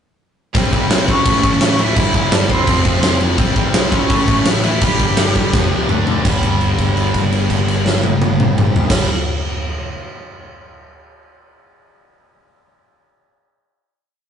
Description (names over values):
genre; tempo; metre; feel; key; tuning
punk rock; 168 BPM; 4/4; straight; unclear; A4 = 440 Hz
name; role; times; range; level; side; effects
heavy high-gain guitar; riff; 0.5-9.1 s; F2 to D4; -25 LUFS; equal; distortion
overdriven electric guitar; riff; 0.5-9.1 s; F2 to D4; -23 LUFS; right 5 dB; none
overdriven picked electric bass; bass; 0.5-9.0 s; E1 to D2; -21 LUFS; equal; none
big rock drum kit; drums; 0.5-9.0 s; crash cymbal, kick drum, snare drum, toms; -16 LUFS; equal; none
sludgy distorted guitar; riff; 0.6-9.1 s; F2 to D4; -23 LUFS; left 2 dB; overdrive
lead guitar through a small cranked amp; melody; 1.1-5.9 s; C4 to G5; -19 LUFS; right 1 dB; overdrive
room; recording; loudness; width
light reverb; rough rehearsal-room recording, tube saturation, nothing above 10.7 kHz; -13 LUFS; side -8 dB against mid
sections
0.5-6.2 riff; 6.2-9.1 final chord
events
drum fill 5.5-6.2; held note 6.2-8.9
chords
0.5 C5; 1.3 A; 2.0 G5; 2.7 F5; 3.4 C5; 4.1 A; 4.8 G5; 5.5 F5; 5.9 D5; 6.2 G5